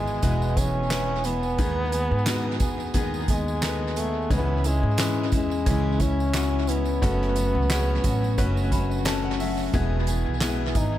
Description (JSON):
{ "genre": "piano-driven pop", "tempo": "88 BPM", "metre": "4/4", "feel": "swing 56% on 16ths", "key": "E major", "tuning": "A4 = 439 Hz", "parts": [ { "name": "French horn with straight mute", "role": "melody", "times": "0.0-11.0 s", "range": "G#3 to D#4", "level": "-29 LUFS", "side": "equal", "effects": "tape echo" }, { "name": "warm upright piano", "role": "accompaniment", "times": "0.0-11.0 s", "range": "G#2 to B5", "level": "-29 LUFS", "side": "left 6 dB", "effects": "tape echo" }, { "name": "picked steel-string acoustic guitar", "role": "riff", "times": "0.0-11.0 s", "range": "E2 to G#4", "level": "-31 LUFS", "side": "right 4 dB", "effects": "tape echo" }, { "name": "upright bass", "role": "bass", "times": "0.0-11.0 s", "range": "E1 to G#2", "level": "-26 LUFS", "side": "equal", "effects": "none" }, { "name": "tambourine", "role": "percussion", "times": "0.1-10.9 s", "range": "none", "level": "-41 LUFS", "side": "right 7 dB", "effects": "tape echo" }, { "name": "soft-mallet drum kit", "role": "drums", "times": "0.2-10.9 s", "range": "handclaps, hi-hat, kick drum, snare drum", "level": "-28 LUFS", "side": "equal", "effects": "tape echo" } ], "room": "light reverb, small room ambience", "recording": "echo-heavy mix", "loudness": "-22 LUFS", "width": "side -13 dB against mid", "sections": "0.0-11.0 A section", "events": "upright piano fill 8.4-9.7", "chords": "0.0 E; 1.6 G#m/D#; 4.3 C#m; 7.0 F#m; 9.7 E", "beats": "0.23 0.91 | 1.59 2.27 2.95 3.63 | 4.31 4.99 5.67 6.34 | 7.02 7.70 8.38 9.06 | 9.74 10.41" }